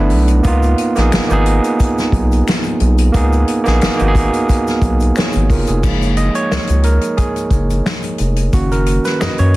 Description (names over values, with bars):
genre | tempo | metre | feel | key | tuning
R&B, neo-soul | 89 BPM | 4/4 | swing 53% on 16ths | F# major | A4 = 440 Hz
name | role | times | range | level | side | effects
overdriven tine electric piano | accompaniment | 0.0-9.6 s | D#3 to D#5 | -16 LUFS | right 2 dB | none
round analog bass | bass | 0.0-9.6 s | E#1 to F#2 | -14 LUFS | equal | none
unplugged drum kit | drums | 0.1-9.6 s | crash cymbal, hi-hat, kick drum, snare drum | -19 LUFS | left 1 dB | soft clipping on snare
tube shaker and finger snaps | percussion | 0.3-9.6 s | none | -31 LUFS | left 5 dB | none
room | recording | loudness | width
little or no reverb | dense, heavily limited modern master, vinyl crackle | -12 LUFS | side -18 dB against mid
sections
0.0-5.8 A section; 5.8-9.6 B section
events
tine electric piano solo 5.8-9.6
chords
0.4 C#13; 5.8 F#maj9; 8.5 Bmaj9/F#